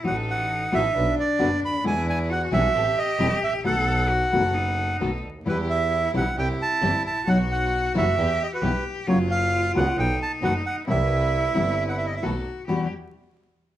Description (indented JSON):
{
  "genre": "tango",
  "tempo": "133 BPM",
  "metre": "4/4",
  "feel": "rubato",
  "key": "E harmonic minor",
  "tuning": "A4 = 441 Hz",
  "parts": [
    { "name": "bright cello", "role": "second line", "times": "0.0-12.9 s", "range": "D4 to A4", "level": "-29 LUFS", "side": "left 2 dB", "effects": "none" },
    { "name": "nylon-string guitar", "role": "accompaniment", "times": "0.0-12.9 s", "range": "E2 to F#4", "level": "-25 LUFS", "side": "left 2 dB", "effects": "none" },
    { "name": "warm studio string section", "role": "stabs", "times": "0.0-12.9 s", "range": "E3 to B4", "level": "-35 LUFS", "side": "right 2 dB", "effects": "none" },
    { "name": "clear double bass", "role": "bass", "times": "0.0-12.9 s", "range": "E1 to E2", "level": "-27 LUFS", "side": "equal", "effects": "none" },
    { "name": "bandoneon", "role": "melody", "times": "0.1-12.2 s", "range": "B4 to B5", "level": "-25 LUFS", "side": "right 3 dB", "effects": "none" }
  ],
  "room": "light reverb",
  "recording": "minimal, uncompressed stereo recording, vinyl crackle",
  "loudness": "-21 LUFS",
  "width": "side -12 dB against mid",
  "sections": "0.0-12.7 A section; 12.7-13.8 B section",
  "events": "none",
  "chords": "0.0 F#m7/A; 0.9 Bm; 1.8 E7; 2.7 Am7; 3.6 B7; 5.5 Em; 6.4 C; 7.3 B; 8.2 Em; 9.1 F#; 10.0 B7; 10.9 Cmaj7; 12.2 B7; 12.7 Emadd9"
}